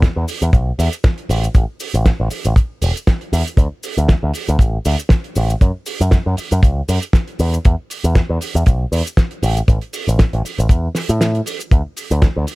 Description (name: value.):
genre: nu-disco, nu disco.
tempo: 118 BPM.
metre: 4/4.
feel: swing 55% on 16ths.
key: A major.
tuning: A4 = 440 Hz.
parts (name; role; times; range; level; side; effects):
picked electric bass with an envelope filter; bass; 0.0-12.4 s; E1 to A2; -16 LUFS; equal; none.
damped 70s drum kit; drums; 0.0-12.6 s; cabasa, hi-hat, snare drum; -22 LUFS; right 1 dB; none.
kick drum; drums; 0.0-12.3 s; none; -11 LUFS; equal; none.
room: little or no reverb.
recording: none.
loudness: -14 LUFS.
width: side -22 dB against mid.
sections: 0.0-12.6 A section.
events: kick drops out 11.2-11.7.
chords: none.